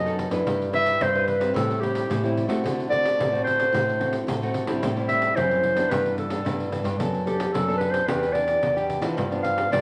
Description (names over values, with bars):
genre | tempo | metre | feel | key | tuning
samba and choro | 110 BPM | 4/4 | straight | unclear | A4 = 440 Hz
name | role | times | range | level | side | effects
warm clarinet | melody | 0.0-9.8 s | G4 to F5 | -26 LUFS | equal | none
nylon-string guitar | accompaniment | 0.0-9.8 s | G2 to B4 | -30 LUFS | equal | none
nylon-string guitar | bass | 0.0-9.8 s | E2 to A3 | -32 LUFS | equal | none
pandeiro | percussion | 0.1-9.8 s | none | -33 LUFS | equal | none
room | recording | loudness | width
wet large studio reverb, RT60 1.2 s | none | -24 LUFS | mono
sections
0.0-9.8 A section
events
none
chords
0.5 Em7/G; 1.6 Am7; 2.6 D7; 4.8 Am7; 5.9 Em7/G; 7.0 Bm7/F#; 8.1 Em7; 9.2 G7